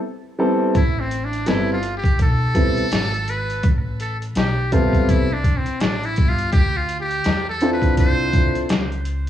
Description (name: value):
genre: hip hop, jazz-hop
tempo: 83 BPM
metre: 4/4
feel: swing 61% on 16ths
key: A minor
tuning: A4 = 440 Hz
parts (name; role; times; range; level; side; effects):
- dark baby grand piano; accompaniment; 0.4-8.6 s; G3 to E5; -21 LUFS; equal; cassette tape, plate reverb
- upright bass; bass; 0.7-9.3 s; G1 to E2; -24 LUFS; equal; none
- trip hop sampler-style drum kit; drums; 0.7-9.3 s; hi-hat, kick drum, snare drum; -19 LUFS; equal; cassette tape
- trumpet with metal mute; melody; 0.8-8.7 s; C4 to C5; -24 LUFS; equal; cassette tape, plate reverb, analog delay
room: light reverb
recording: home recording on cassette, small room ambience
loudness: -17 LUFS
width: side -11 dB against mid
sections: 0.7-9.3 A section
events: break 0.0-0.7; muted trumpet solo 0.7-9.3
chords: 0.0 Am9; 6.5 Dm9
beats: 0.03 | 0.75 1.47 2.19 2.92 | 3.64 4.36 5.08 5.81 | 6.53 7.25 7.98 8.70